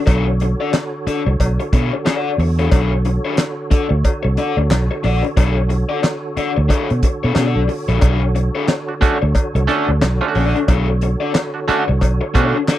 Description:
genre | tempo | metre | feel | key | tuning
funk | 90 BPM | 4/4 | swing 60% on 16ths | unclear | A4 = 439 Hz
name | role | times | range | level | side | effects
percussive tonewheel organ | sustained chords | 0.0-12.8 s | D3 to C#5 | -26 LUFS | right 2 dB | fast rotary speaker, chorus vibrato
raw garage guitar | accompaniment | 0.1-12.8 s | D4 to D5 | -21 LUFS | left 6 dB | overdrive
vintage muted fingered electric bass | bass | 0.1-12.5 s | Bb1 to B2 | -17 LUFS | equal | none
damped 70s drum kit | drums | 0.1-12.8 s | handclaps, hi-hat, kick drum, snare drum | -17 LUFS | right 1 dB | none
cowbell | percussion | 0.1-12.8 s | none | -26 LUFS | left 5 dB | none
overdriven clav | stabs | 8.9-12.6 s | A3 to A4 | -20 LUFS | right 7 dB | none
room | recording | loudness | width
little or no reverb | dry, close 1970s-style studio recording | -15 LUFS | side -13 dB against mid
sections
0.0-12.8 A section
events
none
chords
0.0 Bm9

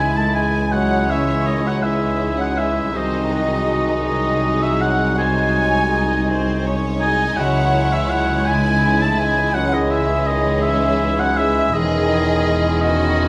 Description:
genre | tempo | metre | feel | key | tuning
classical | 55 BPM (dotted quarters) | 12/8 | rubato | C# minor | A4 = 441 Hz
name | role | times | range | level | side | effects
rich chamber violin section | melody | 0.0-13.3 s | B#3 to G#4 | -32 LUFS | equal | none
clear clarinet | second line | 0.0-13.3 s | C#4 to F#4 | -32 LUFS | equal | none
mellow hollow silver concert flute | second line | 0.0-13.3 s | D#5 to A5 | -31 LUFS | equal | none
warm oboe | second line | 0.0-13.3 s | D#5 to A5 | -24 LUFS | equal | none
warm symphonic violin section | second line | 0.0-13.3 s | D#5 to A5 | -31 LUFS | equal | none
warm bassoon | accompaniment | 0.0-13.3 s | G#3 | -30 LUFS | equal | none
dark trombone section | sustained chords | 0.0-13.3 s | E3 to E4 | -31 LUFS | equal | none
warm French horn section | sustained chords | 0.0-13.3 s | D#3 to A3 | -29 LUFS | equal | none
concert harp | arpeggios | 0.0-13.3 s | B#2 to G#4 | -33 LUFS | equal | none
dark chamber double bass section | bass | 0.0-13.3 s | E1 to C#2 | -27 LUFS | equal | none
rich chamber cello section | bass | 0.0-13.3 s | B#1 to E2 | -26 LUFS | equal | none
rich studio viola section | accompaniment | 0.7-13.3 s | E4 to D#5 | -31 LUFS | equal | none
room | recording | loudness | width
moderate scoring stage reverb, RT60 1.7 s | none | -18 LUFS | mono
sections
0.0-13.3 A section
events
none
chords
0.0 C#m; 2.9 G#7/B#; 7.4 C#m; 11.8 C#m/E

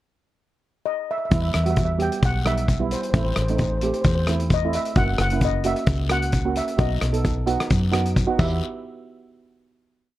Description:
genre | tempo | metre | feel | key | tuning
calypso | 131 BPM | 4/4 | swing 54% on 16ths | E harmonic minor | A4 = 440 Hz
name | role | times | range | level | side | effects
steel pan | melody | 0.9-8.6 s | C5 to G5 | -27 LUFS | left 1 dB | none
steel pan | accompaniment | 1.3-8.6 s | G3 to A4 | -26 LUFS | right 5 dB | none
fingered electric bass | bass | 1.3-8.6 s | F#1 to F#2 | -24 LUFS | equal | none
loose indie drum kit | drums | 1.3-8.5 s | crash cymbal, hi-hat, kick drum, rim click | -23 LUFS | equal | none
guiro | percussion | 1.3-8.6 s | none | -38 LUFS | left 8 dB | none
room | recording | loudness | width
light reverb, small room ambience | dark, warm production | -20 LUFS | side -15 dB against mid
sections
0.0-1.3 pickup bar; 1.3-8.6 verse; 8.6-10.2 final hit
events
none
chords
0.0 N.C.; 1.3 Em; 3.1 Am7; 5.0 F#7; 6.8 B7; 8.4 Em; 8.6 N.C.

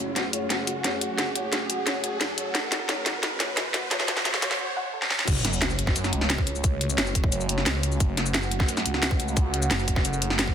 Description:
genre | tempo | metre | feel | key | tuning
dark technical drum and bass | 176 BPM | 4/4 | straight | F# minor | A4 = 440 Hz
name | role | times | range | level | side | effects
dark analog pad | sustained chords | 0.0-10.5 s | A3 to F#5 | -33 LUFS | right 1 dB | chorus, sidechain pumping
felt-muted upright piano | arpeggios | 0.0-5.2 s | F#4 to F#5 | -34 LUFS | left 3 dB | sidechain pumping, dub echo
phased detuned saw bass | bass | 0.0-10.5 s | F#1 to F#2 | -30 LUFS | equal | phaser, overdrive
riser and sub drop | sound effects | 0.0-6.6 s | none | -34 LUFS | right 1 dB | none
drum and bass drum kit | drums | 0.2-10.5 s | cabasa, crash cymbal, hi-hat, snare drum | -26 LUFS | equal | none
electronic kick drum | drums | 5.3-10.5 s | none | -24 LUFS | equal | none
room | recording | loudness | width
light reverb | dense, heavily limited modern master, high-pass filter | -23 LUFS | side -8 dB against mid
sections
0.0-5.3 A section; 5.3-10.5 B section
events
build-up 0.0-5.3; drum fill 0.0-4.6, 5.0; riser 0.0-4.6; break 4.6-5.3; drop 5.3-10.5; impact 5.3-6.6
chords
0.0 F#m

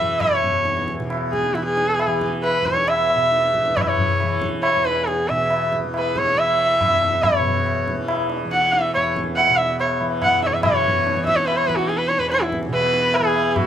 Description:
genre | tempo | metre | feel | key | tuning
indian classical, Hindustani | 134-145 BPM | 4/4 | straight | E raga bhupali | A4 = 442 Hz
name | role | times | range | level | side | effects
rich sarangi | melody | 0.0-13.7 s | E4 to F#5 | -19 LUFS | right 1 dB | none
tanpura | drone | 0.0-13.7 s | E2 to E3 | -27 LUFS | right 1 dB | none
tabla | percussion | 0.2-13.7 s | none | -24 LUFS | left 2 dB | none
room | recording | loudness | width
light reverb | close, detailed microphones | -17 LUFS | side -10 dB against mid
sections
0.0-10.6 A section; 10.6-13.7 B section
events
speeding up 0.0-13.7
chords
none

